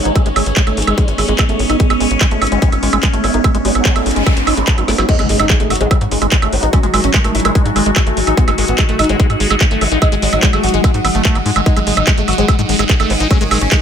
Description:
psychedelic trance; 146 BPM; 4/4; straight; G# phrygian; A4 = 440 Hz
vowel-sweep wobble bass; second line; 0.0-13.2 s; F#3 to B3; -28 LUFS; left 3 dB; ensemble chorus, sidechain pumping, high-pass filter, tape echo
evolving wavetable pad; sustained chords; 0.0-13.8 s; F#3 to G#4; -21 LUFS; equal; phaser, built-in reverb, sidechain pumping
granular cloud pad; texture; 0.0-13.8 s; G#3 to C#6; -23 LUFS; right 1 dB; built-in reverb, sidechain pumping
liquid acid bass; riff; 0.1-13.8 s; F#3 to D#4; -20 LUFS; left 1 dB; phaser, auto-pan, sidechain pumping, tape echo
tight sequencer bass; bass; 0.1-13.7 s; G#1 to G#2; -18 LUFS; equal
drum and bass drum kit; drums; 0.1-13.8 s; crash cymbal, handclaps, hi-hat, snare drum, woodblock; -18 LUFS; right 4 dB
electronic kick drum; drums; 0.2-13.8 s; -13 LUFS; equal
noise sweep and impact; sound effects; 3.7-6.7 s; -24 LUFS; right 1 dB
oud; melody; 5.1-13.8 s; D#3 to F#4; -22 LUFS; equal; phaser, sidechain pumping, tape echo
light reverb, digital ambience; -11 LUFS; side -8 dB against mid
0.0-5.1 A section; 5.1-13.8 B section
filter sweep on acid bass 0.0-5.1; noise sweep 3.7-5.1; drum fill 4.9; drop 5.1-13.8; impact 5.1-6.7
0.0 G#5
| 0.15 0.57 0.98 1.39 | 1.80 2.21 2.62 3.03 | 3.44 3.85 4.26 4.68 | 5.09 5.50 5.91 6.32 | 6.73 7.14 7.55 7.96 | 8.37 8.79 9.20 9.61 | 10.02 10.43 10.84 11.25 | 11.66 12.07 12.48 12.89 | 13.31 13.72

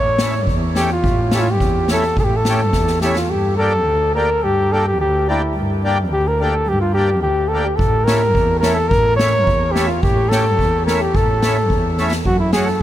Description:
klezmer; 107 BPM; 2/4; straight; A phrygian dominant; A4 = 440 Hz
mellow cornet; melody; 0.0-12.8 s; E4 to C#5; -18 LUFS; equal; tape echo
muted double bass; bass; 0.0-12.8 s; D2 to A2; -20 LUFS; equal
accordion; accompaniment; 0.2-12.7 s; A3 to G4; -24 LUFS; left 1 dB
street-band drum kit; drums; 0.2-3.3, 7.8-12.7 s; kick drum, snare drum; -21 LUFS; equal
moderate huge ambient reverb, RT60 7.6 s; dreamy mix soaked in reverb; -14 LUFS; side -12 dB against mid
0.0-3.3 A section; 3.3-12.3 A section
drum fill 2.7-3.3, 12.0
0.0 A; 3.3 Gm; 7.8 A; 12.3 F#m
0.48 | 1.05 1.61 | 2.18 2.74 | 3.30 3.87 | 4.43 4.99 | 5.55 6.11 | 6.67 7.23 | 7.79 8.35 | 8.91 9.47 | 10.03 10.58 | 11.14 11.70 | 12.26 12.81

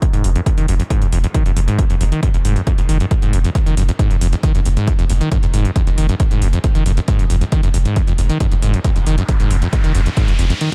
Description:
driving peak-time techno; 136 BPM; 4/4; straight; F phrygian; A4 = 440 Hz
acid bass, saw; riff; 0.0-10.7 s; F2 to Eb3; -22 LUFS; equal; sidechain pumping, delay
electronic hi-hat; drums; 0.0-10.7 s; -33 LUFS; equal
electronic kick drum; drums; 0.0-10.3 s; -18 LUFS; equal
saturated sub bass; bass; 0.1-10.5 s; F1; -19 LUFS; equal; overdrive, sidechain pumping, low-pass filter
riser; sound effects; 8.6-10.7 s; -31 LUFS; equal
little or no reverb; -16 LUFS; mono
0.0-10.7 A section
riser 8.6-10.7
0.0 Fm
0.02 0.46 | 0.90 1.34 1.79 2.23 | 2.67 3.11 3.55 3.99 | 4.43 4.87 5.32 5.76 | 6.20 6.64 7.08 7.52 | 7.96 8.40 8.85 9.29 | 9.73 10.17 10.61

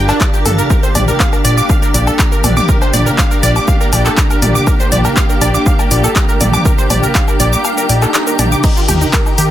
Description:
melodic techno; 121 BPM; 4/4; straight; A4 = 440 Hz
muted studio string section; sustained chords; 0.0-9.5 s; Eb3 to Bb4; -21 LUFS; left 1 dB; sidechain pumping
wide unison pluck; arpeggios; 0.0-9.5 s; D4 to D6; -17 LUFS; right 1 dB; sidechain pumping, tape echo
fat analog bass; bass; 0.0-9.5 s; G1 to Eb2; -14 LUFS; equal; sidechain pumping
granular cloud pad; texture; 0.0-9.5 s; D4 to Bb5; -21 LUFS; right 1 dB; built-in reverb, sidechain pumping
techno drum kit; drums; 0.1-9.5 s; crash cymbal, handclaps, hi-hat, ride cymbal, shaker, toms, woodblock; -17 LUFS; left 1 dB
electronic kick drum; drums; 0.2-9.2 s; -14 LUFS; equal
swell; sound effects; 7.8-8.6 s; -24 LUFS; left 6 dB
light reverb; dense, heavily limited modern master; -10 LUFS; side -12 dB against mid
0.0-9.5 A section
kick drops out 7.6-8.6; swell 7.8-8.6
0.0 Gm7; 0.7 Bb6; 8.6 Eb
0.21 | 0.70 1.20 1.70 2.19 | 2.69 3.18 3.68 4.17 | 4.67 5.17 5.66 6.16 | 6.65 7.15 7.64 8.14 | 8.64 9.13

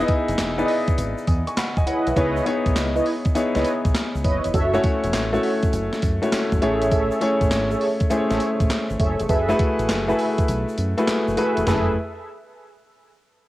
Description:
R&B, new jack swing; 101 BPM; 4/4; swing 67% on 16ths; F# dorian; A4 = 440 Hz
warm concert grand piano; accompaniment; 0.0-11.9 s; A3 to D#6; -22 LUFS; left 1 dB; cassette tape
mellow synth brass; stabs; 0.0-11.9 s; E4 to E5; -26 LUFS; right 1 dB; chorus, cassette tape, tape echo
gated 80s digital drum machine; drums; 0.1-11.9 s; handclaps, hi-hat, kick drum, snare drum, tambourine, toms; -23 LUFS; equal; gated reverb, gated reverb snare, cassette tape
deep dub fingered electric bass; bass; 0.3-11.9 s; E1 to F#2; -27 LUFS; equal
egg shaker; percussion; 0.3-11.9 s; -47 LUFS; right 4 dB
light reverb; home recording on cassette; -19 LUFS; side -16 dB against mid
0.0-11.7 A section; 11.7-13.5 B section
kick muted 10.5-11.7
0.0 Emaj7; 2.2 C#m9; 4.5 F#m7; 6.6 Amaj7; 9.3 F#m11
0.38 0.98 1.57 | 2.16 2.76 3.35 3.95 | 4.54 5.13 5.73 6.32 | 6.92 7.51 8.10 8.70 | 9.29 9.89 10.48 11.07 | 11.67

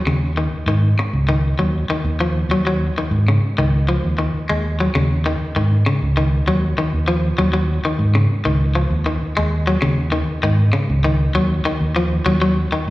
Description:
afrobeat; 98 BPM; 4/4; straight; Eb minor; A4 = 440 Hz
electric guitar at the edge of break-up; arpeggios; 0.1-12.9 s; Db3 to Ab3; -20 LUFS; left 2 dB; slapback echo
fingered electric bass; bass; 0.1-12.9 s; Db2 to Ab2; -18 LUFS; equal
light reverb, digital ambience; live gig heard through the venue's PA, recital hall reverb; -16 LUFS; side -17 dB against mid
0.0-12.9 A section
0.0 Eb7(no3)
| 0.07 0.68 1.29 1.90 | 2.51 3.12 3.73 4.34 | 4.95 5.56 6.17 6.78 | 7.39 8.00 8.61 9.22 | 9.83 10.44 11.05 11.66 | 12.27 12.88

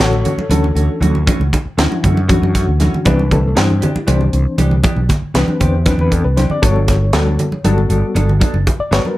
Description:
electric jazz fusion; 235 BPM (eighths); 7/8; straight; D major; A4 = 442 Hz
reed electric piano; accompaniment; 0.0-9.2 s; D3 to D5; -19 LUFS; left 3 dB; overdrive, fast tremolo
mellow electric guitar; stabs; 0.0-9.1 s; E3 to A4; -23 LUFS; right 2 dB; lush chorus
fretless electric bass; bass; 0.0-9.1 s; F#1 to G2; -15 LUFS; equal
crisp fusion drum kit; drums; 0.0-9.0 s; hi-hat, kick drum, snare drum; -18 LUFS; equal
congas; percussion; 0.1-9.2 s; -20 LUFS; right 1 dB
light reverb; -12 LUFS; side -16 dB against mid
0.0-9.2 A section
0.0 Dmaj9; 3.1 Cmaj9; 6.6 Gmaj9
0.25 0.51 0.76 1.01 | 1.27 1.53 1.78 2.04 2.29 2.55 2.80 | 3.06 3.31 3.57 3.82 4.08 4.33 4.59 | 4.84 5.10 5.36 5.61 5.87 6.12 6.38 | 6.63 6.89 7.14 7.40 7.65 7.91 8.16 | 8.41 8.67 8.93

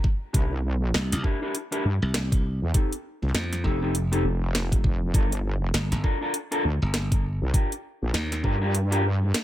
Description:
glitch hop; 100 BPM; 4/4; swing 60% on 16ths; G minor; A4 = 438 Hz
electronic kick drum; drums; 0.0-8.6 s; -23 LUFS; equal
mellow electric guitar; stabs; 0.3-9.0 s; C4 to Bb4; -30 LUFS; left 1 dB; sidechain pumping, low-pass filter, digital delay
wobble bass; bass; 0.3-9.3 s; F1 to G2; -24 LUFS; equal; chorus, overdrive
drum and bass drum kit; drums; 0.3-9.4 s; hi-hat, snare drum; -28 LUFS; equal
glassy slap bass; bass; 0.9-8.4 s; F1 to F2; -26 LUFS; equal
little or no reverb; -23 LUFS; side -13 dB against mid
0.0-9.4 A section
0.3 C9; 2.7 F9; 5.1 Gm7; 7.5 Ebmaj7
| 0.34 0.94 1.54 2.14 | 2.74 3.34 3.94 4.54 | 5.14 5.74 6.34 6.94 | 7.54 8.14 8.74 9.34

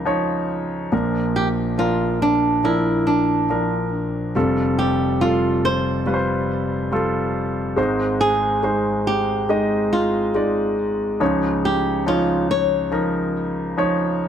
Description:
pop; 70 BPM; 4/4; straight; A4 = 440 Hz
flamenco guitar; melody; 0.0-14.2 s; D4 to Db5; -21 LUFS; right 1 dB
warm concert grand piano; accompaniment; 0.0-14.3 s; F1 to Eb5; -20 LUFS; equal
light reverb; -18 LUFS; side -9 dB against mid
0.0-14.3 A section
0.0 Dbadd9; 0.9 Bb; 4.4 Fadd9; 7.8 Ab; 11.2 Dbadd9
0.07 | 0.92 1.78 2.64 3.49 | 4.35 5.21 6.07 6.92 | 7.78 8.64 9.49 10.35 | 11.21 12.06 12.92 13.78

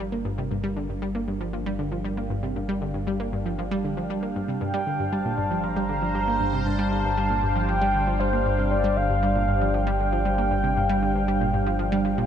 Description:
ambient, sequencer-driven space music; 117 BPM; 4/4; straight; G minor; A4 = 440 Hz
sweeping resonant pad; sustained chords; 0.0-12.3 s; G3 to G5; -29 LUFS; right 1 dB; chorus
analog pluck; riff; 0.0-12.2 s; G2 to Bb3; -27 LUFS; right 1 dB; chorus, ping-pong delay
round analog bass; bass; 0.0-12.3 s; G1; -29 LUFS; equal
mellow horn-like synth lead; melody; 4.6-12.3 s; C5 to Bb5; -26 LUFS; equal; chorus, ping-pong delay
moderate huge ambient reverb, RT60 7.7 s; nothing above 10.5 kHz; -22 LUFS; side -9 dB against mid
0.0-12.3 A section
fade-in on analog synth pad 0.0-12.3; fade-in on analog synth bass 0.0-12.3
0.0 Gm7
0.00 | 0.51 1.02 1.53 2.05 | 2.56 3.07 3.58 4.10 | 4.61 5.12 5.64 6.15 | 6.66 7.17 7.69 8.20 | 8.71 9.23 9.74 10.25 | 10.77 11.28 11.79

